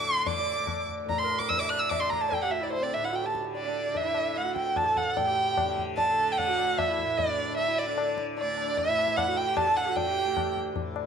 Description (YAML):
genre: indian classical, Hindustani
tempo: 149 BPM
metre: 3/4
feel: straight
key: D major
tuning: A4 = 438 Hz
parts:
  - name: dark violin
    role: melody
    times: 0.0-10.6 s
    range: C5 to F#6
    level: -26 LUFS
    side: right 1 dB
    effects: none
  - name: tanpura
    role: drone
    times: 0.0-11.1 s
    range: D2 to D3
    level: -38 LUFS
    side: left 2 dB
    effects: none
  - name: tabla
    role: percussion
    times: 0.3-11.1 s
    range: none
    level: -34 LUFS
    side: left 10 dB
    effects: none
  - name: rich sarangi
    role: second line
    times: 0.4-10.7 s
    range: C4 to E5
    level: -33 LUFS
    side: right 9 dB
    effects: none
room: moderate echo chamber reverb, RT60 1.4 s, small room ambience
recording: 1960s-style stereo with parts hard left and right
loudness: -25 LUFS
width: side -7 dB against mid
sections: 0.0-5.2 A section; 5.2-11.1 B section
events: speeding up 0.0-11.1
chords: none